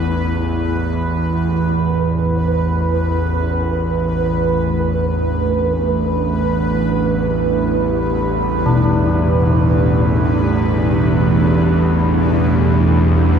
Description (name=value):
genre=dark ambient drone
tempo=free time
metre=none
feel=none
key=unclear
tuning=A4 = 440 Hz
part: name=deep dark ambient pad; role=sustained chords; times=4.4-13.4 s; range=A3 to G#4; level=-23 LUFS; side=right 1 dB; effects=chorus, built-in reverb
part: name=bronze singing bowl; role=arpeggios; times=0.0-0.4, 8.7-13.4 s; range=B2 to E4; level=-22 LUFS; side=left 2 dB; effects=ping-pong delay
part: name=bowed-like drone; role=drone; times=0.0-13.4 s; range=A1 to E2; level=-16 LUFS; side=right 1 dB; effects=built-in reverb
part: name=bubbling stepped-filter texture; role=texture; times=0.0-13.4 s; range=B4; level=-22 LUFS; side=right 4 dB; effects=chorus, built-in reverb
room=wet cathedral reverb, RT60 6.1 s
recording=none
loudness=-14 LUFS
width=side -7 dB against mid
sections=0.0-1.8 A section; 1.8-13.4 B section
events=fade-out on synth texture 1.8-13.4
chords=0.0 Eadd11/A; 1.8 A5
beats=free time